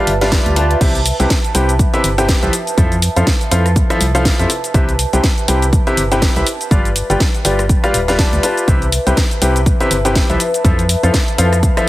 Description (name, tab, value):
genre	piano house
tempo	122 BPM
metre	4/4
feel	swing 58% on 16ths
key	C major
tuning	A4 = 440 Hz
part	bright upright piano	riff	0.0-11.9 s	C3 to A5	-17 LUFS	left 1 dB	sidechain pumping, dub echo
part	warbly tape-like pad	texture	0.0-11.9 s	B4 to A5	-23 LUFS	equal	chorus, built-in reverb, sidechain pumping
part	organ-like FM bass	bass	0.1-11.7 s	D1 to F2	-17 LUFS	equal	sidechain pumping
part	house drum kit	drums	0.1-11.9 s	cabasa, crash cymbal, hi-hat, rim click, snare drum	-20 LUFS	equal	none
part	electronic kick drum	drums	0.3-11.7 s	none	-15 LUFS	equal	none
room	light reverb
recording	heavily compressed radio sound, multiband compression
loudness	-12 LUFS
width	side -16 dB against mid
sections	0.0-11.9 A section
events	none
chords	0.0 G7; 0.8 Cmaj7; 2.5 Fmaj7; 4.5 Cmaj7; 6.5 G7; 8.7 Cmaj7; 10.4 Fmaj7